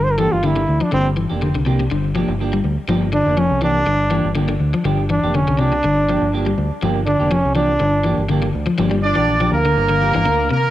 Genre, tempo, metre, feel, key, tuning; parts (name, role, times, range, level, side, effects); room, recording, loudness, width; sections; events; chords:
afrobeat; 122 BPM; 4/4; swing 54% on 16ths; G dorian; A4 = 440 Hz
brilliant trombone; melody; 0.0-8.3 s; C4 to C5; -20 LUFS; right 1 dB; cassette tape, analog delay
electric guitar at the edge of break-up; arpeggios; 0.0-10.7 s; C3 to G3; -20 LUFS; left 3 dB; cassette tape, analog delay
fingered electric bass; bass; 0.0-10.5 s; F1 to D2; -21 LUFS; right 1 dB
semi-hollow electric guitar; stabs; 0.2-10.5 s; F3 to G4; -26 LUFS; right 5 dB; wide subtle chorus, cassette tape
mellow horn section; melody; 9.0-10.7 s; Bb3 to D5; -16 LUFS; right 2 dB; cassette tape
light reverb, small room reverb; home recording on cassette; -15 LUFS; side -14 dB against mid
0.0-8.8 A section; 8.8-10.7 B section
trombone solo 0.0-8.8
0.0 Gm7